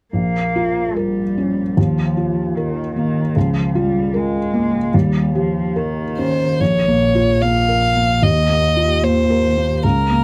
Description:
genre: neoclassical piano and strings.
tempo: 75 BPM.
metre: 4/4.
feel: rubato.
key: Bb dorian.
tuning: A4 = 440 Hz.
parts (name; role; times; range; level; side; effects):
rich cello; second line; 0.1-6.4 s; Eb3 to Bb3; -24 LUFS; equal; none.
felt-muted upright piano; accompaniment; 0.1-10.2 s; Bb1 to Bb4; -20 LUFS; equal; none.
warm violin; melody; 6.2-10.2 s; Bb4 to F5; -20 LUFS; equal; none.
warm double bass; bass; 6.6-10.2 s; Bb1 to Eb2; -23 LUFS; equal; none.
room: light reverb.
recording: none.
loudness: -17 LUFS.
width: mono.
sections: 0.1-6.6 A section; 6.6-10.2 B section.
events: none.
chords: 0.1 Bbm; 1.8 Ebsus2; 3.4 Bbm/Db; 4.9 Eb7; 6.6 Bbm; 8.2 Ebsus2.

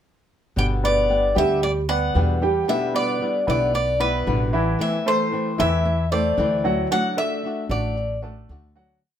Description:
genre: latin.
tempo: 114 BPM.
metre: 4/4.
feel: straight.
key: G major.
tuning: A4 = 440 Hz.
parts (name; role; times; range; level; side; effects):
Cuban tres; melody; 0.6-8.2 s; B4 to G5; -23 LUFS; left 1 dB; none.
flamenco guitar; accompaniment; 0.6-9.0 s; B2 to G4; -27 LUFS; left 3 dB; none.
upright bass; bass; 0.6-9.0 s; G1 to E2; -24 LUFS; equal; none.
warm baby grand piano; arpeggios; 0.8-9.0 s; E3 to G5; -24 LUFS; right 2 dB; none.
room: light reverb.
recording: minimal, uncompressed stereo recording.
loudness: -19 LUFS.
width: side -9 dB against mid.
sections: 0.6-9.0 A section.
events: fade-out 6.9-9.0.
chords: 0.6 G; 2.7 Em7; 4.8 Am; 6.9 D.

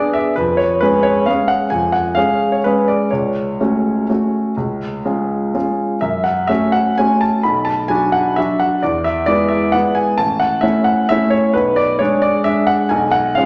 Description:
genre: classical, piano waltz.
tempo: 120-140 BPM.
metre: 3/4.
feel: rubato.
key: F# minor.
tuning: A4 = 439 Hz.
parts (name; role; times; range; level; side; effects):
clear baby grand piano; solo; 0.0-13.5 s; A1 to B5; -16 LUFS; equal; none.
room: wet recital hall reverb, RT60 1.4 s.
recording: none.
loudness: -16 LUFS.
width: mono.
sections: 0.0-13.5 A section.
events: none.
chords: 0.4 C#/E#; 3.1 F#m/C#; 4.6 C#; 6.0 F#m; 7.4 Bm; 8.8 E; 10.2 A; 11.6 G#dim/B; 12.9 C#7/B.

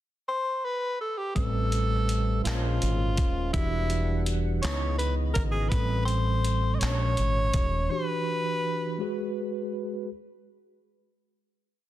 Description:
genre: slow six-eight R&B.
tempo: 55 BPM (dotted quarters).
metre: 6/8.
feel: straight.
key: unclear.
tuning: A4 = 440 Hz.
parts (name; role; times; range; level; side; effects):
breathy tenor saxophone; melody; 0.3-9.4 s; E4 to D#5; -30 LUFS; equal; digital delay.
tonewheel organ; sustained chords; 1.3-5.7 s; C#3 to F#5; -40 LUFS; left 2 dB; overdrive, chorus vibrato, slow rotary speaker.
mellow tine electric piano; accompaniment; 1.4-10.1 s; A2 to C#5; -32 LUFS; right 1 dB; medium stereo tremolo.
woody fretless electric bass; bass; 1.4-7.9 s; D#1 to C#2; -27 LUFS; equal; none.
dusty soul sampler-style drum kit; drums; 1.4-7.7 s; handclaps, hi-hat, kick drum; -30 LUFS; equal; none.
room: digital ambience.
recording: dense, heavily limited modern master.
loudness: -25 LUFS.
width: side -13 dB against mid.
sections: 0.0-1.4 pickup bar; 1.4-10.1 chorus.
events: none.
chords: 0.0 N.C.; 1.4 Am9; 2.4 A#m9; 3.5 Em9; 4.6 C#m9; 5.7 Am7; 6.8 A#m7; 7.9 Em9; 9.0 G#m7.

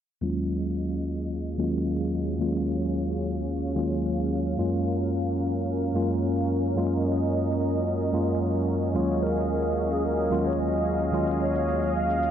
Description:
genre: nu-disco, nu disco.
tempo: 110 BPM.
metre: 4/4.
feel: straight.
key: unclear.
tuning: A4 = 439 Hz.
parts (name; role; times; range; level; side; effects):
tine electric piano; accompaniment; 0.2-12.3 s; D#2 to E#4; -26 LUFS; equal; medium stereo tremolo.
lush unison pad; sustained chords; 0.2-12.3 s; F#3 to E#5; -30 LUFS; right 1 dB; chorus.
shaker; drums; 0.2-12.3 s; none; -66 LUFS; left 1 dB; none.
mellow hollow baroque flute; melody; 8.9-12.3 s; G#4 to E#5; -29 LUFS; left 1 dB; dub echo.
room: light reverb.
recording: low-pass filter.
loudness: -24 LUFS.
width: side -9 dB against mid.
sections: 0.2-12.3 A section.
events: filter sweep on analog synth pad 0.2-12.3; filter sweep 0.2-12.3.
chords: 0.2 D#m11; 4.6 F#maj7; 8.9 D#m11.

